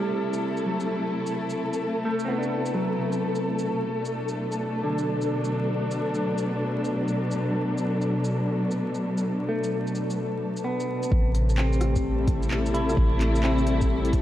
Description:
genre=future garage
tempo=129 BPM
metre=4/4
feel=swing 64% on 16ths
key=A dorian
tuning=A4 = 445 Hz
part: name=semi-hollow electric guitar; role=accompaniment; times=0.0-6.3, 9.5-14.2 s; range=C3 to E4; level=-29 LUFS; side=equal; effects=vintage 12-bit sampler grit, sidechain pumping, tape echo
part: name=warm studio string section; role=sustained chords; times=0.0-14.2 s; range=B2 to A4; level=-26 LUFS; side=left 1 dB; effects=vintage 12-bit sampler grit, sidechain pumping
part: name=flickering grainy texture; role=texture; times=0.0-11.1 s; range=A4 to A5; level=-36 LUFS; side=right 1 dB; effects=built-in reverb
part: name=organic electronic drum kit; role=drums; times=0.3-14.2 s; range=handclaps, hi-hat, rim click, shaker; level=-37 LUFS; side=equal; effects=overdrive
part: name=soft 808-style bass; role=bass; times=11.1-14.2 s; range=A1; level=-24 LUFS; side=equal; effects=sidechain pumping
part: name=electronic kick drum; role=drums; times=11.1-14.2 s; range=none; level=-25 LUFS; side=equal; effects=overdrive
room=moderate lush hall reverb, RT60 2.2 s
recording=vinyl crackle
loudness=-23 LUFS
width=side -12 dB against mid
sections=0.0-11.1 A section; 11.1-14.2 B section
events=filter sweep on clean electric guitar 0.0-11.1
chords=0.0 Am7; 3.7 Bm7; 11.1 Am7

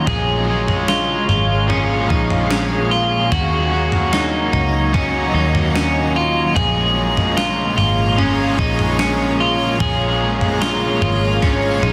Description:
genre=dream pop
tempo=74 BPM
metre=4/4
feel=straight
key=Bb minor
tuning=A4 = 439 Hz
part: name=cranked stack guitar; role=accompaniment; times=0.0-11.9 s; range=Bb2 to Gb4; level=-24 LUFS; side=equal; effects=overdrive, tremolo, subtle chorus
part: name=granular cloud pad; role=sustained chords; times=0.0-11.9 s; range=Gb3 to Bb5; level=-26 LUFS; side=equal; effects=built-in reverb
part: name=electric guitar at the edge of break-up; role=arpeggios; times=0.0-11.9 s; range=Db4 to Ab4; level=-22 LUFS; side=equal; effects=lush chorus, digital delay
part: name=vintage muted picked electric bass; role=bass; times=0.0-11.9 s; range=Ab1 to Eb2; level=-24 LUFS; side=equal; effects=none
part: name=gated 80s digital drum machine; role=drums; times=0.1-11.9 s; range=kick drum, snare drum, toms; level=-25 LUFS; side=equal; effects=gated reverb, gated reverb snare
room=moderate lush hall reverb, RT60 2.8 s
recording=dense, heavily limited modern master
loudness=-17 LUFS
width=mono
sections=0.0-11.9 A section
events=drum fill 11.4-11.9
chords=0.1 Bbm7; 3.3 Ebm7; 6.6 Bbm7

